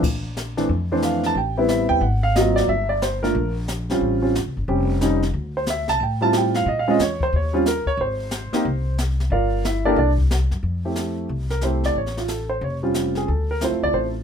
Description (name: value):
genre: jazz piano trio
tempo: 181 BPM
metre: 4/4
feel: swing 64% on 8ths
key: unclear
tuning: A4 = 441 Hz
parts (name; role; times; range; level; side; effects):
- upright bass; bass; 0.0-14.2 s; E#1 to Bb2; -24 LUFS; left 1 dB; none
- jazz brush drum kit; drums; 0.0-14.2 s; brushed snare drum, crash cymbal, hi-hat, kick drum, snare drum; -29 LUFS; left 2 dB; none
- warm grand piano; melody; 0.6-14.1 s; E3 to A5; -21 LUFS; right 1 dB; none
room: light reverb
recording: minimal, uncompressed stereo recording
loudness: -19 LUFS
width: side -7 dB against mid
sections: 0.0-10.6 A section; 10.6-14.2 B section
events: none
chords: 0.0 Bbmaj9#11; 1.4 Am7; 2.0 Ab13; 2.7 Gm; 4.0 A7alt; 5.3 Dm11; 6.7 Bbm; 7.3 Eb7(no3); 8.0 Ab; 9.3 Gm7; 10.0 D7/C; 10.6 Fmaj7; 11.9 A7alt; 13.3 Dm7